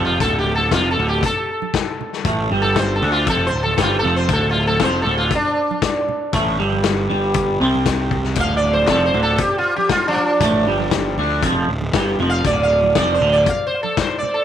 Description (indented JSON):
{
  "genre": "psychedelic rock",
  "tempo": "118 BPM",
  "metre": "4/4",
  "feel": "straight",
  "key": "D minor",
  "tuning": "A4 = 441 Hz",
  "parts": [
    { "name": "sitar", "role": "melody", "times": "0.0-14.4 s", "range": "F3 to F5", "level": "-19 LUFS", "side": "right 1 dB", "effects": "tape echo" },
    { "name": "twangy electric guitar", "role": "riff", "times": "0.0-13.5 s", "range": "D2 to D4", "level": "-20 LUFS", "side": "right 1 dB", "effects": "rotary speaker" },
    { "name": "fuzz picked electric bass", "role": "bass", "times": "0.0-13.4 s", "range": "D1 to D2", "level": "-23 LUFS", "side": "right 1 dB", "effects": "overdrive" },
    { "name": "congas", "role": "percussion", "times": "0.1-14.3 s", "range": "none", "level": "-33 LUFS", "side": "right 13 dB", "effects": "none" },
    { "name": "vintage drum kit", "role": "drums", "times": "0.2-14.1 s", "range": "hi-hat, kick drum, snare drum", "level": "-22 LUFS", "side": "left 6 dB", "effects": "none" }
  ],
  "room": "light reverb, small room ambience",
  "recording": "1960s-style stereo with parts hard left and right",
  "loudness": "-16 LUFS",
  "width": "side -10 dB against mid",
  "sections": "0.0-14.4 A section",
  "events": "drum fill 0.0; sitar solo 0.0-14.4",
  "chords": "0.0 Dm"
}